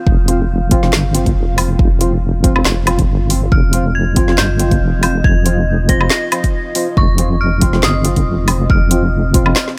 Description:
deep dubstep; 139 BPM; 4/4; swing 55% on 16ths, half-time; F minor; A4 = 439 Hz
deep dark ambient pad; sustained chords; 0.0-9.8 s; C4 to F5; -28 LUFS; equal; chorus, built-in reverb
deep soft wobble bass; bass; 0.1-9.5 s; F1 to G1; -18 LUFS; equal; chorus
electronic kick drum; drums; 0.1-9.4 s; -16 LUFS; equal
percussive organ stab; stabs; 0.3-9.6 s; F3 to F4; -24 LUFS; equal; lush chorus, cassette tape, dub echo
deep house drum kit; drums; 0.3-9.8 s; handclaps, hi-hat, snare drum, woodblock; -20 LUFS; equal
dark detuned synth bell; melody; 3.5-9.8 s; Db6 to Bb6; -25 LUFS; equal; chorus, dub echo
digital ambience; -14 LUFS; mono
0.0-9.8 A section
0.0 F5

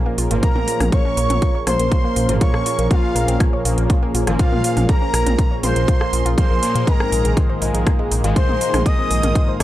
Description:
melodic techno; 121 BPM; 4/4; straight; Bb minor; A4 = 441 Hz
warm analog pad; sustained chords; 0.0-9.6 s; Eb3 to Bb4; -28 LUFS; equal; chorus, sidechain pumping
woody wave-folded pluck; arpeggios; 0.0-9.6 s; Ab3 to Db6; -29 LUFS; equal; chorus, sidechain pumping, analog delay
analog synth brass; stabs; 0.0-9.6 s; Ab2 to Bb3; -25 LUFS; right 2 dB; chorus, cassette tape, sidechain pumping, analog delay
analog drone; drone; 1.2-9.6 s; Bb2 to Bb3; -32 LUFS; left 1 dB
swelling detuned saw bass; bass; 0.2-9.6 s; Ab1 to Bb2; -21 LUFS; equal; sidechain pumping
house drum kit; drums; 0.2-9.6 s; hi-hat, rim click, toms; -25 LUFS; right 1 dB; sidechain pumping on hats, small room ambience, sidechain pumping on toms
expressive portamento lead; melody; 0.4-9.6 s; F4 to Eb5; -23 LUFS; left 1 dB; lush chorus, sidechain pumping, tape echo
big bright polysynth; second line; 0.4-9.6 s; F5 to Eb6; -32 LUFS; right 1 dB; sidechain pumping, analog delay
electronic kick drum; drums; 0.4-9.5 s; -17 LUFS; equal; small room ambience
little or no reverb; dry, gritty hardware recording; -15 LUFS; side -14 dB against mid
0.0-9.6 A section
0.0 Bbm7; 6.9 Absus2

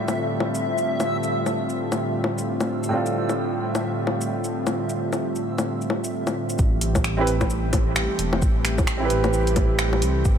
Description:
future garage; 131 BPM; 4/4; swing 61% on 16ths; A minor; A4 = 441 Hz
felt-muted upright piano; accompaniment; 0.0-10.4 s; A2 to B4; -29 LUFS; right 3 dB; sidechain pumping, dub echo
airy breathy pad; sustained chords; 0.0-10.4 s; A2 to G4; -26 LUFS; equal; chorus, sidechain pumping
backwards swelling texture; texture; 0.0-6.6 s; E5; -31 LUFS; equal; built-in reverb
deep house drum kit; drums; 0.1-10.4 s; bongos, finger snaps, hi-hat, shaker; -27 LUFS; left 3 dB; small room reverb
dark detuned saw bass; bass; 6.6-10.4 s; E1 to C2; -24 LUFS; equal; sidechain pumping
electronic kick drum; drums; 6.6-10.4 s; -21 LUFS; equal; small room reverb
light reverb, digital ambience; -21 LUFS; side -8 dB against mid
0.0-6.6 A section; 6.6-10.4 B section
0.0 G9sus4/A; 6.6 Am7

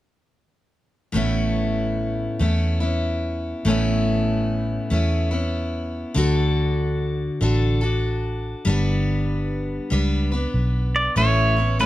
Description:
honky-tonk and classic country; 96 BPM; 4/4; swing 65% on 8ths; A mixolydian; A4 = 441 Hz
picked steel-string acoustic guitar; accompaniment; 1.1-11.9 s; A2 to B4; -23 LUFS; left 2 dB
vintage muted fingered electric bass; bass; 1.1-11.9 s; G1 to E2; -22 LUFS; right 1 dB
pedal steel guitar; melody; 11.0-11.9 s; B4 to D5; -20 LUFS; right 2 dB
little or no reverb; close, detailed microphones; -20 LUFS; side -15 dB against mid
1.1-11.2 A section
1.1 Aadd9; 6.2 D; 8.7 G; 11.2 Aadd9

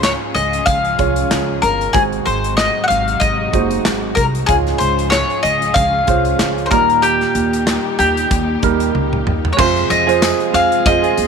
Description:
piano-driven pop; 94 BPM; 4/4; swing 56% on 16ths; Ab major; A4 = 441 Hz
bowl-back mandolin; melody; 0.0-11.3 s; G4 to Gb5; -16 LUFS; left 3 dB
warm grand piano; accompaniment; 0.0-11.3 s; Ab2 to F5; -20 LUFS; right 12 dB
warm studio string section; sustained chords; 0.0-11.3 s; Bb2 to Ab4; -25 LUFS; left 12 dB
upright bass; bass; 0.0-11.3 s; Gb1 to F2; -22 LUFS; right 1 dB
modern studio drum kit; drums; 0.0-11.3 s; crash cymbal, handclaps, hi-hat, kick drum, snare drum, toms; -20 LUFS; equal
direct-recorded clean electric guitar; riff; 9.6-11.3 s; F3 to Ab4; -20 LUFS; right 14 dB
tambourine; percussion; 9.6-11.3 s; -31 LUFS; left 17 dB
light reverb, small room ambience; 1960s-style stereo with parts hard left and right; -13 LUFS; side -6 dB against mid
0.0-9.6 A section; 9.6-11.3 B section
drum fill 8.9-9.6
0.0 Db; 1.9 Ab7; 4.5 Db; 6.7 Eb; 9.6 Fm

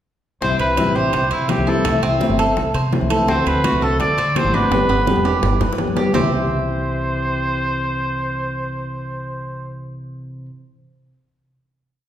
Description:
latin, Cuban son and guajira; 168 BPM; 4/4; straight; C major; A4 = 440 Hz
warm trumpet; melody; 0.4-9.8 s; E4 to D5; -22 LUFS; equal
nylon-string guitar; accompaniment; 0.4-10.5 s; C3 to G4; -22 LUFS; left 2 dB
Cuban tres; arpeggios; 0.4-10.5 s; B3 to C5; -24 LUFS; right 3 dB
upright bass; bass; 0.4-10.5 s; E1 to D3; -24 LUFS; equal
bongos; percussion; 0.4-6.2 s; -28 LUFS; left 3 dB
congas; percussion; 0.4-6.2 s; -29 LUFS; left 1 dB
timbales; percussion; 0.6-6.2 s; -28 LUFS; right 5 dB
wet recital hall reverb, RT60 1.6 s; recorded in a church or concert hall; -16 LUFS; side -11 dB against mid
0.4-6.1 A section; 6.1-9.0 final chord
drum fill 4.7-6.1
0.4 C; 1.9 Am; 3.3 D7; 4.7 G; 6.1 C

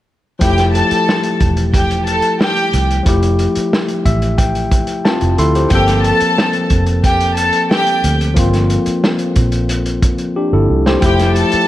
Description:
lush 1970s-style soul; 90 BPM; 4/4; straight; F major; A4 = 441 Hz
warm studio string section; second line; 0.4-11.7 s; G4 to A5; -16 LUFS; equal
overdriven tine electric piano; accompaniment; 0.4-11.7 s; F3 to C6; -17 LUFS; left 2 dB
vintage muted fingered electric bass; bass; 0.4-11.6 s; E1 to D2; -16 LUFS; right 1 dB
vintage drum kit; drums; 0.4-11.7 s; hi-hat, kick drum, snare drum; -17 LUFS; equal
light reverb, small room ambience; -12 LUFS; side -14 dB against mid
0.4-11.7 A section
tine electric piano fill 3.7-5.7; drum fill 10.4-11.0
0.4 Fmaj9; 5.7 Gm11; 11.0 Fmaj9

